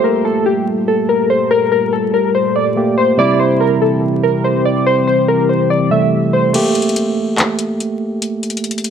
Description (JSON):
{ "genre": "hip hop, trap", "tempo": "143 BPM", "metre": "4/4", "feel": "half-time", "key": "G dorian", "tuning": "A4 = 439 Hz", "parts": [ { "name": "warbly lo-fi synth keys", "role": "melody", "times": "0.0-6.5 s", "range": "G4 to E5", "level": "-15 LUFS", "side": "left 1 dB", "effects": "chorus, low-pass filter, digital delay" }, { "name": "barky tine electric piano", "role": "accompaniment", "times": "0.0-8.9 s", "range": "C3 to G4", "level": "-17 LUFS", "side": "right 2 dB", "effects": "medium stereo tremolo, low-pass filter" }, { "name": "deep dark ambient pad", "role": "sustained chords", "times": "0.0-6.5 s", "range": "Bb2 to A4", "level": "-20 LUFS", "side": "left 1 dB", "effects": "chorus, built-in reverb" }, { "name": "booming analog drum machine", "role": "drums", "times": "6.5-8.9 s", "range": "crash cymbal, handclaps, hi-hat", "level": "-20 LUFS", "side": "left 2 dB", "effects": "none" } ], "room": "moderate recital hall reverb, RT60 1.5 s, digital ambience", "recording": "vinyl crackle", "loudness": "-12 LUFS", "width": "side -8 dB against mid", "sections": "0.0-6.5 A section; 6.5-8.9 B section", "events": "break 6.5-8.9", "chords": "0.0 Gmadd9; 3.2 C; 6.5 Gmadd9" }